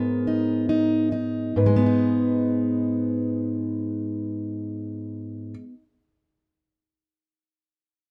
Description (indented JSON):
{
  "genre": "acoustic folk-pop ballad",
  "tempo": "free time",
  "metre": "none",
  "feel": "none",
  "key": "G# minor",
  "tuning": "A4 = 443 Hz",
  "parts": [
    { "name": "felt-muted upright piano", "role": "melody", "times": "0.0-5.5 s", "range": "D#4 to B4", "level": "-34 LUFS", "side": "equal", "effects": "none" },
    { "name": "fingerpicked plugged-in steel-string acoustic guitar", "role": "accompaniment", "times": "0.0-5.8 s", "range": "G#2 to D#4", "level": "-25 LUFS", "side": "equal", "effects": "none" }
  ],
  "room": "moderate studio reverb, RT60 0.6 s",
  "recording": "rough home demo mix",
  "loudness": "-24 LUFS",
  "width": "mono",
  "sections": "0.0-1.6 A section; 1.6-6.9 B section",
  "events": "slowing down 0.0-1.6",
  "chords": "0.0 G#m",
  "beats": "free time"
}